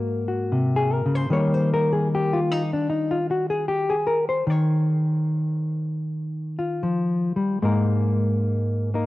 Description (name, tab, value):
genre	solo jazz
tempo	76 BPM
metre	4/4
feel	swing 68% on 8ths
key	Eb mixolydian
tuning	A4 = 440 Hz
part	hollow-body jazz guitar	solo	0.0-9.1 s	Ab2 to Db5	-21 LUFS	left 1 dB	cassette tape
room	light reverb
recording	home recording on cassette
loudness	-21 LUFS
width	side -17 dB against mid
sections	0.0-9.1 A section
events	hollow-body jazz guitar solo 0.0-9.1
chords	0.0 Ab9; 1.3 Eb9; 7.6 Absus2